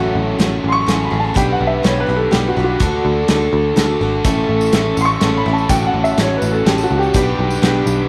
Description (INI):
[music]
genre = folk rock and heartland rock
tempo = 124 BPM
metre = 3/4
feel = straight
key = unclear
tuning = A4 = 440 Hz
[part]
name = warm upright piano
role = second line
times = 0.0-7.9 s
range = F4 to C#6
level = -22 LUFS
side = equal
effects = none
[part]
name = picked steel-string acoustic guitar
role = accompaniment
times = 0.0-8.1 s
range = A2 to B4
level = -22 LUFS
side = equal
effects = none
[part]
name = biting overdriven guitar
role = riff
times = 0.0-8.1 s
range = A2 to B4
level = -26 LUFS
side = equal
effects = spring reverb
[part]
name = picked electric bass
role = bass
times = 0.0-8.1 s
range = G#1 to D2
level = -22 LUFS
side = equal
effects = none
[part]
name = natural country drum kit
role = drums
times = 0.4-7.7 s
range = hi-hat, kick drum, snare drum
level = -20 LUFS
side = equal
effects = none
[part]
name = bright tonewheel organ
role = sustained chords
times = 4.2-8.1 s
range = A4 to D6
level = -30 LUFS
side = equal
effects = subtle chorus
[part]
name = tambourine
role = percussion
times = 4.2-8.0 s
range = none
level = -37 LUFS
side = equal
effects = none
[sound]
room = moderate plate reverb, RT60 1.4 s, small room ambience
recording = none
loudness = -16 LUFS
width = mono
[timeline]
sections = 0.0-8.1 A section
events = upright piano solo 0.0-8.1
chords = 0.0 F#madd9/A; 1.4 G/B; 2.8 D; 4.3 A; 5.7 F#m/A; 7.1 G/B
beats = 0.40 0.88 | 1.36 1.84 2.32 | 2.81 3.29 3.77 | 4.25 4.74 5.22 | 5.70 6.18 6.66 | 7.15 7.63